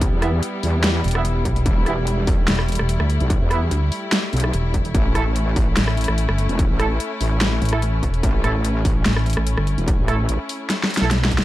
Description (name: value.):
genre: heavy wobble dubstep.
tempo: 146 BPM.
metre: 4/4.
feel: half-time.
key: unclear.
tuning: A4 = 439 Hz.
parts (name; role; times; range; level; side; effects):
clear studio string section; sustained chords; 0.0-11.4 s; G3 to E4; -27 LUFS; left 2 dB; sidechain pumping, low-pass filter.
wobble bass; bass; 0.0-10.4 s; E1 to E2; -20 LUFS; equal; chorus, overdrive.
dubstep drum kit; drums; 0.0-11.4 s; hi-hat, rim click, snare drum; -23 LUFS; equal; none.
electronic kick drum; drums; 0.0-11.4 s; none; -20 LUFS; equal; distortion.
warm brass ensemble; stabs; 0.2-11.1 s; E3 to A4; -28 LUFS; right 4 dB; ping-pong delay.
pulsing pluck wobble bass; bass; 1.0-11.4 s; E1 to D2; -20 LUFS; equal; chorus, overdrive.
room: digital ambience.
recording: dark, warm production.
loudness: -17 LUFS.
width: side -15 dB against mid.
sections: 0.0-11.4 A section.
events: drum fill 10.7-11.4.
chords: 0.0 Em; 4.9 A.